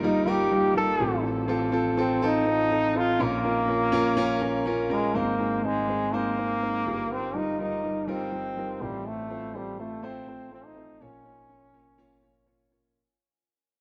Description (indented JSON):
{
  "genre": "pop",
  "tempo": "123 BPM",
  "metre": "4/4",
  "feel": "straight",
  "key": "Bb dorian",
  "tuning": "A4 = 440 Hz",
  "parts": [
    { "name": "warm concert grand piano", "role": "accompaniment", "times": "0.0-13.0 s", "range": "G1 to Db5", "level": "-30 LUFS", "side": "equal", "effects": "none" },
    { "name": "brilliant trombone", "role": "melody", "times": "0.1-12.5 s", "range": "G3 to A4", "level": "-29 LUFS", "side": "equal", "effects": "none" }
  ],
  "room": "moderate lush hall reverb, RT60 2.8 s",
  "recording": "dark, warm production",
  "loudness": "-26 LUFS",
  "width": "mono",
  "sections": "0.0-5.2 A section; 5.2-13.0 B section",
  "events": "fade-out 5.2-13.0",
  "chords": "0.0 Ebadd9/G; 1.0 F/A; 3.2 Bbm; 5.2 Ab; 6.9 Ebadd9/G; 8.8 F/A; 11.0 Bbm"
}